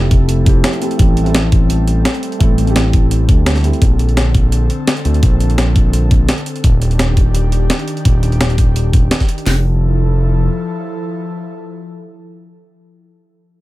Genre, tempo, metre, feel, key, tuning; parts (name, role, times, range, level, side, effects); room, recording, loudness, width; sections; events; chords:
liquid drum and bass; 170 BPM; 4/4; straight; F major; A4 = 439 Hz
felt-muted upright piano; accompaniment; 0.0-3.8 s; A3 to A4; -21 LUFS; right 1 dB; tape echo
airy breathy pad; sustained chords; 0.0-13.0 s; D3 to A4; -23 LUFS; left 1 dB; chorus
smooth gliding synth bass; bass; 0.0-10.5 s; Eb1 to D2; -14 LUFS; equal
breakbeat sampler-style drum kit; drums; 0.1-9.4 s; hi-hat, snare drum; -18 LUFS; equal; small room ambience
drum and bass drum kit; drums; 0.1-9.6 s; hi-hat, kick drum, snare drum; -12 LUFS; equal; small room ambience
little or no reverb; -11 LUFS; side -17 dB against mid
0.0-9.5 A section; 9.5-12.3 B section
0.0 Fmaj7; 1.0 Am7; 3.8 Bbmaj9; 6.6 Ebmaj7; 9.5 Fmaj7